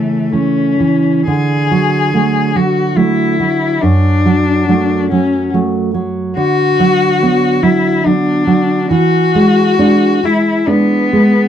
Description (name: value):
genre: romantic duo for cello and classical guitar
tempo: 71 BPM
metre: 3/4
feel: uneven beats, rubato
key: unclear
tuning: A4 = 440 Hz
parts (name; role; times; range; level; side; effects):
- rich cello; melody; 0.0-11.5 s; A3 to G#4; -14 LUFS; left 4 dB; none
- nylon-string guitar; accompaniment; 0.0-11.5 s; F#2 to D4; -12 LUFS; right 3 dB; none
room: light reverb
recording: dry, close 1970s-style studio recording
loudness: -10 LUFS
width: side -9 dB against mid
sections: 0.0-11.5 A section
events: none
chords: 0.0 A/C#; 1.3 D; 3.8 D/F#; 6.4 Bm/D; 8.9 E7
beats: 0.33 | 1.27 2.14 2.97 | 3.82 4.68 5.53 | 6.37 7.22 8.05 | 8.91 9.79 10.68